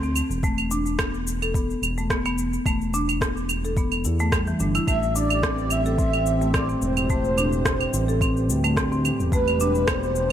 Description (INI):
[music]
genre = organic downtempo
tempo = 108 BPM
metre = 4/4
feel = swing 54% on 16ths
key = A minor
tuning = A4 = 440 Hz
[part]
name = marimba with medium mallets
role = arpeggios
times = 0.0-10.0 s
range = E3 to A4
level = -26 LUFS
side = equal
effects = digital delay
[part]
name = smooth gliding synth bass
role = bass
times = 0.0-10.3 s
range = E1 to E2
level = -26 LUFS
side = equal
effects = sidechain pumping
[part]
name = electronic shaker, claves and rim click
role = drums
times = 0.0-10.3 s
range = none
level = -27 LUFS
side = right 1 dB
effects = overdrive
[part]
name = electronic kick drum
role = drums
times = 0.4-10.0 s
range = none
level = -26 LUFS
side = equal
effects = overdrive
[part]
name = breathy flute-like synth lead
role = melody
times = 4.9-10.3 s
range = B4 to E5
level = -26 LUFS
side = right 1 dB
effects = ensemble chorus, ping-pong delay
[part]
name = warm analog pad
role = sustained chords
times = 4.9-10.3 s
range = A2 to G4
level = -30 LUFS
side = right 2 dB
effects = chorus, sidechain pumping
[sound]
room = light reverb, digital ambience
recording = faint mains hum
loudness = -20 LUFS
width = side -10 dB against mid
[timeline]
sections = 0.0-10.3 A section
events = none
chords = 0.4 E7(no3); 4.9 Am7; 9.3 Em7